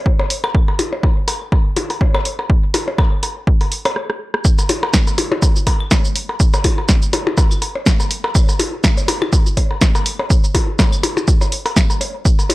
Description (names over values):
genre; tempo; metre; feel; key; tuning
techno; 123 BPM; 4/4; swing 56% on 16ths; none; none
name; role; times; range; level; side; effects
electronic kick drum; drums; 0.1-12.4 s; none; -14 LUFS; equal; none
percussion blips and claves; percussion; 0.2-12.5 s; none; -21 LUFS; left 2 dB; overdrive, tape echo
punchy analog drum machine; drums; 0.3-12.5 s; hi-hat, rim click, shaker, snare drum; -20 LUFS; equal; none
room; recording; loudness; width
digital ambience; dry, gritty hardware recording; -14 LUFS; side -18 dB against mid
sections
0.0-4.4 A section; 4.4-12.5 B section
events
drum fill 4.0-4.4; stop 4.0-4.4; drop 4.4-12.5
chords
none